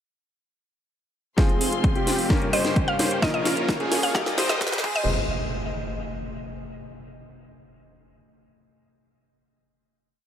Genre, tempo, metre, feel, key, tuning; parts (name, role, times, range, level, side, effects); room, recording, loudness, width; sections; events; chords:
EDM, festival progressive house; 130 BPM; 4/4; straight; F minor; A4 = 440 Hz
bright concert grand piano; accompaniment; 1.4-5.1 s; G2 to Ab4; -33 LUFS; left 3 dB; sidechain pumping, dub echo
warm studio string section; sustained chords; 1.4-5.1 s; Ab3 to Eb6; -35 LUFS; left 2 dB
warm grand piano; arpeggios; 1.4-5.0 s; G4 to C5; -32 LUFS; equal; sidechain pumping, low-pass filter, dub echo
dense compressed supersaw; riff; 1.4-5.0 s; C4 to C5; -30 LUFS; right 1 dB; sidechain pumping, low-pass filter, dub echo
detuned saw bass; bass; 1.4-5.1 s; Eb1 to Bb1; -37 LUFS; equal
electronic kick drum; drums; 1.4-4.9 s; -23 LUFS; equal; overdrive
house drum kit; drums; 1.4-4.9 s; crash cymbal, hi-hat, snare drum; -28 LUFS; equal; overdrive
riser and impact; sound effects; 2.9-6.7 s; -33 LUFS; equal
mallet-like synth pluck; melody; 2.5-5.1 s; Eb5 to F5; -29 LUFS; equal; chorus, dub echo
light reverb; high-pass filter; -21 LUFS; side -9 dB against mid
1.4-5.1 build; 5.1-6.9 final note
build-up 1.4-5.1; drum fill 1.4-5.1; filter sweep on supersaw synth 1.4-5.1; filter sweep on grand piano 1.4-5.1; filter sweep 1.4-5.1
1.4 Fm; 2.3 Gdim; 3.2 Bbm; 4.1 Eb; 4.8 Fm; 5.1 N.C.